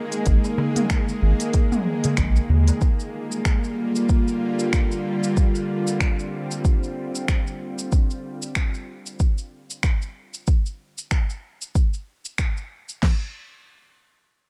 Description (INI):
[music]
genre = organic downtempo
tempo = 94 BPM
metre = 4/4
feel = swing 58% on 16ths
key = unclear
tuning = A4 = 441 Hz
[part]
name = bowed-like drone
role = sustained chords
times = 0.0-7.9 s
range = D3 to Ab4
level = -28 LUFS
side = equal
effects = built-in reverb, sidechain pumping
[part]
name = organic electronic drum kit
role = drums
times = 0.1-13.0 s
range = finger snaps, hi-hat, shaker, toms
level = -30 LUFS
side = equal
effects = none
[part]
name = round analog bass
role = bass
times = 0.3-2.7 s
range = Ab1 to Eb2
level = -20 LUFS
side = equal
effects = sidechain pumping
[part]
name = deep house drum kit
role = drums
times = 0.3-13.2 s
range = crash cymbal, kick drum, snare drum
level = -23 LUFS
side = equal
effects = none
[part]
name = darbuka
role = percussion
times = 0.4-2.8 s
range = none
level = -30 LUFS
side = equal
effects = none
[sound]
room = moderate lush hall reverb, RT60 1.6 s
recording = dark, warm production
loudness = -23 LUFS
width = mono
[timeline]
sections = 0.0-13.0 A section; 13.0-14.5 B section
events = none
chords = 0.0 Absus2; 2.8 Bb6; 7.9 N.C.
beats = | 0.26 0.90 1.54 2.18 | 2.81 3.45 4.09 4.73 | 5.37 6.01 6.64 7.28 | 7.92 8.56 9.20 9.84 | 10.47 11.11 11.75 12.39 | 13.03